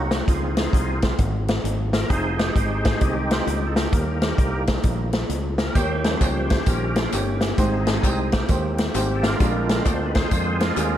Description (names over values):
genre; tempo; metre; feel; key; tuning
uptempo gospel; 131 BPM; 4/4; swing 64% on 8ths; unclear; A4 = 440 Hz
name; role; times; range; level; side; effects
bright tonewheel organ; sustained chords; 0.0-11.0 s; D3 to C5; -27 LUFS; right 2 dB; fast rotary speaker, chorus vibrato
fingered electric bass; bass; 0.0-11.0 s; F1 to F2; -25 LUFS; equal; none
swinging big-band drum kit; drums; 0.1-10.9 s; hi-hat, kick drum, snare drum; -22 LUFS; equal; none
warm concert grand piano; accompaniment; 5.8-11.0 s; Ab2 to Db5; -27 LUFS; equal; none
tambourine and handclaps; percussion; 5.8-10.9 s; none; -35 LUFS; left 1 dB; none
room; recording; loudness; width
light reverb; none; -19 LUFS; side -11 dB against mid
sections
0.0-11.0 A section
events
tonewheel organ solo 0.0-11.0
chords
0.3 Dbmaj7; 2.1 Fm7; 3.9 Eb; 5.8 Eb7; 7.6 Abmaj7; 9.4 Bb7